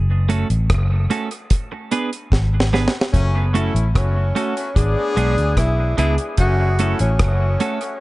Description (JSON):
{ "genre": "dub reggae", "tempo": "74 BPM", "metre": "4/4", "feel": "straight", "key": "F# minor", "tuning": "A4 = 440 Hz", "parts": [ { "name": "vintage muted fingered electric bass", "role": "bass", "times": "0.0-7.6 s", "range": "F#1 to D2", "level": "-18 LUFS", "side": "equal", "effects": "none" }, { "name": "clean electric guitar", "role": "accompaniment", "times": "0.3-7.8 s", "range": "G#3 to B4", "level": "-25 LUFS", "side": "right 4 dB", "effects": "wide subtle chorus, dub echo" }, { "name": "deep reggae drum kit", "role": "drums", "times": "0.3-8.0 s", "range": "hi-hat, kick drum, rim click, snare drum", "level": "-20 LUFS", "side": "equal", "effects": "none" }, { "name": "clear horn section", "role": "second line", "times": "3.1-7.9 s", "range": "F#3 to G#4", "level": "-25 LUFS", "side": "left 3 dB", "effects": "dub echo" }, { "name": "breathy tenor saxophone", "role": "melody", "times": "4.0-8.0 s", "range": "C#4 to F#4", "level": "-24 LUFS", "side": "equal", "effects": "dub echo" } ], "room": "light reverb", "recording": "echo-heavy mix, nothing above 10.6 kHz", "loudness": "-16 LUFS", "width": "side -19 dB against mid", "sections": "0.0-3.1 A section; 3.1-8.0 B section", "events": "break 0.0-3.1; drum fill 2.3-3.1", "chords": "0.0 F#m; 1.5 G#dim; 3.1 F#m; 4.8 G#dim; 6.4 F#m" }